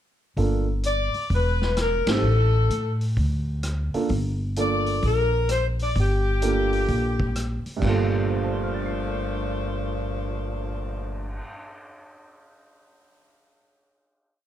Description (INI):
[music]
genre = jazz, big band swing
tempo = 129 BPM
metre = 4/4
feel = swing 66% on 8ths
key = G minor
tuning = A4 = 440 Hz
[part]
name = warm grand piano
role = accompaniment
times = 0.4-12.4 s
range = G2 to C7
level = -28 LUFS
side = right 4 dB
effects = none
[part]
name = upright bass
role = bass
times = 0.4-11.4 s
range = E1 to A2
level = -25 LUFS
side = equal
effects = none
[part]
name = vintage drum kit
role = drums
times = 0.4-11.4 s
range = crash cymbal, cymbal swell, hi-hat, kick drum, ride cymbal, rim click, snare drum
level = -32 LUFS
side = equal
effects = none
[part]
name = clear saxophone section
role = melody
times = 0.9-11.4 s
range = Bb2 to D5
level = -26 LUFS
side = left 3 dB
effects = none
[sound]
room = light reverb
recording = dark, warm production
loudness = -22 LUFS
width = side -11 dB against mid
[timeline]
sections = 0.4-7.8 A section; 7.8-11.5 final chord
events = band accent 2.0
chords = 0.4 Gm9; 1.3 E; 2.2 N.C.; 3.2 D5; 4.1 Gm9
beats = | 0.38 0.84 1.31 1.77 | 2.24 2.70 3.17 3.63 | 4.10 4.56 5.03 5.49 | 5.96 6.42 6.88 7.34 | 7.81 8.27 8.73 9.20 | 9.66 10.12 10.59 11.05